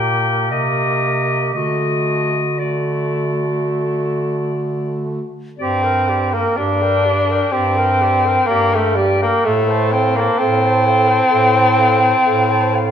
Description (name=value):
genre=classical, lyrical piece for single-reed quartet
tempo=56-65 BPM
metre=4/4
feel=rubato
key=G minor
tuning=A4 = 435 Hz
part: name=clear clarinet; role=melody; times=0.0-12.9 s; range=D5 to A5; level=-24 LUFS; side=left 6 dB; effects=none
part: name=warm clarinet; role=second line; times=0.0-12.9 s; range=F#4 to C5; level=-22 LUFS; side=right 5 dB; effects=none
part: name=warm tenor saxophone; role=accompaniment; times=0.0-12.9 s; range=G3 to D4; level=-17 LUFS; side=left 2 dB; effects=none
part: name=bright bass clarinet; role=bass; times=0.0-12.9 s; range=G2 to D3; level=-22 LUFS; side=right 2 dB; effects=none
room=wet recital hall reverb, RT60 1.4 s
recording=minimal, uncompressed stereo recording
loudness=-14 LUFS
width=side -8 dB against mid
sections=0.0-5.6 A section; 5.6-12.9 B section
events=none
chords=0.0 Gm/Bb; 1.5 D; 5.6 Gm; 9.5 F/A